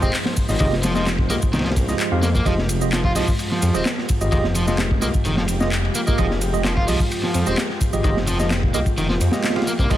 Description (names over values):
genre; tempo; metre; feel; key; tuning
breakbeat, breaks; 129 BPM; 4/4; straight; F minor; A4 = 440 Hz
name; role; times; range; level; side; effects
lush unison pad; sustained chords; 0.0-10.0 s; F3 to C5; -28 LUFS; equal; chorus, sidechain pumping
crunchy overdriven guitar; riff; 0.0-10.0 s; Eb3 to F4; -26 LUFS; equal; tube saturation, dub echo
tine electric piano; stabs; 0.0-10.0 s; Ab3 to F5; -26 LUFS; right 3 dB; slow stereo tremolo, dub echo
dark detuned saw bass; bass; 0.0-10.0 s; Eb1 to F2; -22 LUFS; equal; none
crunchy breakbeat drum kit; drums; 0.0-10.0 s; hi-hat, kick drum, ride cymbal, snare drum; -22 LUFS; equal; none
house drum kit; drums; 0.0-10.0 s; handclaps, ride cymbal, shaker; -29 LUFS; equal; overdrive
room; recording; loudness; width
small room ambience; none; -18 LUFS; side -13 dB against mid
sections
0.0-10.0 A section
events
none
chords
0.0 Fm9